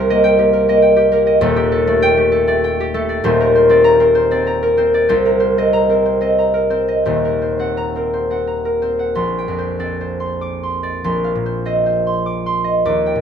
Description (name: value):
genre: classical, solo harp piece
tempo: 85-104 BPM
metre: 3/4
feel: rubato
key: Bb major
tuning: A4 = 441 Hz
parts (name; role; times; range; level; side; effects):
- concert harp; solo; 0.0-13.2 s; Eb1 to D6; -13 LUFS; equal; none
room: light reverb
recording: close, detailed microphones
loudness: -13 LUFS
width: side -8 dB against mid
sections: 0.0-9.1 A section; 9.1-13.2 B section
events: none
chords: 0.0 Cm7; 1.4 Ebmaj7#11; 3.2 Bbadd9/Eb; 5.1 Cm7; 7.1 Ebm6; 9.1 Bb69; 11.0 Cm11/Bb